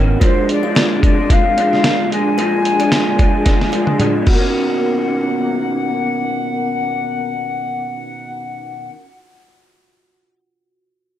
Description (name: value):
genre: indie pop, bedroom pop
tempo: 111 BPM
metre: 4/4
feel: swing 55% on 16ths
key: unclear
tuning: A4 = 440 Hz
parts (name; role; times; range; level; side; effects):
- electric guitar through a small old amp; accompaniment; 0.0-9.1 s; A#2 to D4; -18 LUFS; equal; ensemble chorus, warbly pitch drift
- silver concert flute; melody; 0.2-8.9 s; C5 to G#5; -21 LUFS; left 3 dB; lush chorus
- kalimba; second line; 0.2-6.1 s; C4 to E#5; -25 LUFS; right 3 dB; lush chorus, tape echo
- lo-fi sampler-style drum kit; drums; 0.2-4.4 s; crash cymbal, hi-hat, kick drum, snare drum, toms; -16 LUFS; equal; vintage 12-bit sampler grit
room: light reverb, digital ambience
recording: none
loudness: -14 LUFS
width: side -11 dB against mid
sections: 0.0-4.5 A section; 4.5-8.9 B section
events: drum fill 3.5-4.5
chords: 0.2 A#7; 4.3 Bmaj9